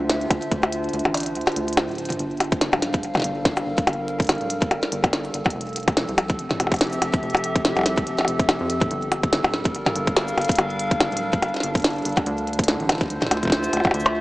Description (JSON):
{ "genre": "IDM", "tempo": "143 BPM", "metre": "4/4", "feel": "swing 56% on 16ths", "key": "G dorian", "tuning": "A4 = 437 Hz", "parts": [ { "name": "warbly tape-like pad", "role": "sustained chords", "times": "0.0-14.2 s", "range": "D3 to F5", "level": "-26 LUFS", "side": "equal", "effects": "chorus, built-in reverb" }, { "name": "rubbery square bass", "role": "bass", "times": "0.0-14.2 s", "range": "D1 to F2", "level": "-31 LUFS", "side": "equal", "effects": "none" }, { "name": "glitchy drum kit", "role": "drums", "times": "0.1-14.1 s", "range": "hi-hat, percussion blips, shaker, snare drum, toms", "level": "-22 LUFS", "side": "equal", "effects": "none" }, { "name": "electronic kick drum", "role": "drums", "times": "0.3-13.9 s", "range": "none", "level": "-24 LUFS", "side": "equal", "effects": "none" } ], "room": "light reverb", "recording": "small speaker sound", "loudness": "-20 LUFS", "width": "side -18 dB against mid", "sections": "0.0-2.2 A section; 2.2-14.2 B section", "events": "kick drops out 1.4-2.2", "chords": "0.0 Dm9; 2.2 Gm7; 5.5 Fmaj9; 8.9 Gm7; 12.3 Dm9" }